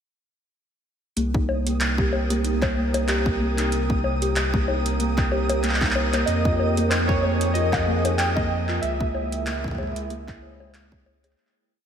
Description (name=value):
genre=IDM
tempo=94 BPM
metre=4/4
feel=swing 56% on 16ths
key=C phrygian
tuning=A4 = 440 Hz
part: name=warbly tape-like pad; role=sustained chords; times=1.6-11.4 s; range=C3 to G5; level=-30 LUFS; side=equal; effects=chorus, built-in reverb
part: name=kalimba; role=arpeggios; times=1.2-11.3 s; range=Bb3 to Fb5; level=-28 LUFS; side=equal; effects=analog delay
part: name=warm sub bass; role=bass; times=1.2-11.4 s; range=C2 to F2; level=-26 LUFS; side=equal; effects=none
part: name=booming analog drum machine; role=drums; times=1.2-11.6 s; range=bongos, handclaps, hi-hat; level=-27 LUFS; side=left 1 dB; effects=diffuse ambient delay
part: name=flickering grainy texture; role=texture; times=1.6-11.4 s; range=Eb6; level=-36 LUFS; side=right 2 dB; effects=built-in reverb
part: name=electronic kick drum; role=drums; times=1.3-11.0 s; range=none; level=-26 LUFS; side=equal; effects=none
part: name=warbly lo-fi synth keys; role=melody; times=6.3-10.7 s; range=C5 to G5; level=-27 LUFS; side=right 3 dB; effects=chorus, analog delay
room=moderate lush hall reverb, RT60 3.0 s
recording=dreamy mix soaked in reverb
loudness=-20 LUFS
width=side -8 dB against mid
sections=1.2-11.4 groove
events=fade-out 8.0-11.4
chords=1.2 Cm7; 6.3 Fm11; 8.8 Dbm6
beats=| 1.17 1.81 2.44 3.08 | 3.72 4.36 5.00 5.64 | 6.28 6.91 7.55 8.19 | 8.83 9.47 10.11 10.74